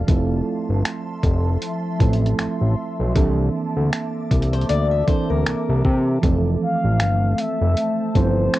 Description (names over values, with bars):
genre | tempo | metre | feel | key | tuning
contemporary R&B | 78 BPM | 4/4 | swing 58% on 16ths | F major | A4 = 439 Hz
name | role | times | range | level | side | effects
mellow FM electric piano | accompaniment | 0.0-8.6 s | E3 to A4 | -25 LUFS | right 4 dB | chorus, cassette tape
glassy FM pad | sustained chords | 0.0-8.6 s | F3 to D6 | -29 LUFS | left 1 dB | ensemble chorus, built-in reverb, phaser, cassette tape
fat analog bass | bass | 0.0-8.5 s | F1 to C3 | -20 LUFS | left 1 dB | none
dusty soul sampler-style drum kit | drums | 0.1-8.6 s | finger snaps, hi-hat, kick drum | -20 LUFS | left 1 dB | none
fingerpicked swing-style acoustic guitar | arpeggios | 4.5-6.2 s | Bb4 to E5 | -25 LUFS | left 6 dB | cassette tape, analog delay
mellow horn-like synth lead | melody | 6.6-8.6 s | C5 to F5 | -23 LUFS | equal | chorus
room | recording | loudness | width
little or no reverb | home recording on cassette | -18 LUFS | side -16 dB against mid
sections
0.0-6.2 A section; 6.2-8.6 B section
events
none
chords
0.1 Fmaj7; 3.2 C13; 6.2 Fmaj7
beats
| 0.08 0.85 1.62 2.39 | 3.15 3.92 4.69 5.46 | 6.23 7.00 7.77 8.54